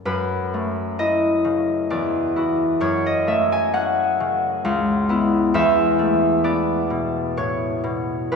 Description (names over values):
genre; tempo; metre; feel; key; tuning
classical, solo harp piece; 65 BPM; 3/4; uneven beats, rubato; F# minor; A4 = 440 Hz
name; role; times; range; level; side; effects
concert harp; solo; 0.0-8.4 s; C#2 to G#5; -18 LUFS; left 1 dB; none
room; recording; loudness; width
wet cathedral reverb, RT60 5.6 s; recorded in a church or concert hall, studio ambience; -18 LUFS; side -5 dB against mid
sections
0.0-8.4 A section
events
none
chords
0.0 F#m11; 1.9 E9sus4; 2.8 F#m; 4.7 C#m7; 5.6 E7sus4